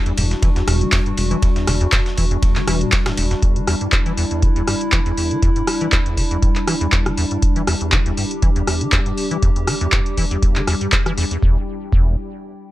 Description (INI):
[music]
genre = acid house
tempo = 120 BPM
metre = 4/4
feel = swing 54% on 16ths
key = E minor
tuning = A4 = 440 Hz
[part]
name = warbly tape-like pad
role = sustained chords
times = 0.0-11.7 s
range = G3 to G4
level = -24 LUFS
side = left 1 dB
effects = chorus, built-in reverb, sidechain pumping
[part]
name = acid bass, square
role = riff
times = 0.1-12.2 s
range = E1 to E3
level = -23 LUFS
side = equal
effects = ensemble chorus, sidechain pumping
[part]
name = booming analog drum machine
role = drums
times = 0.1-11.4 s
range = handclaps, hi-hat, rim click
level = -21 LUFS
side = equal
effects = none
[part]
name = dusty soul sampler-style drum kit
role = drums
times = 0.1-3.4 s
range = hi-hat, ride cymbal, snare drum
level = -30 LUFS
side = right 1 dB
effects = high-pass filter on cymbals, high-pass filter on snare, high-pass filter on hats
[part]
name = round analog bass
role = bass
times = 0.2-3.3, 11.4-12.2 s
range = E1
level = -20 LUFS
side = equal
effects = tube saturation, sidechain pumping
[part]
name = electronic kick drum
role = drums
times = 0.4-12.0 s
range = none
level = -18 LUFS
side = equal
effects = none
[sound]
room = little or no reverb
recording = dry, gritty hardware recording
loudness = -16 LUFS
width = side -16 dB against mid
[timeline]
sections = 0.0-11.4 A section; 11.4-12.7 B section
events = filter sweep on acid bass 0.0-11.4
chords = 0.0 Em7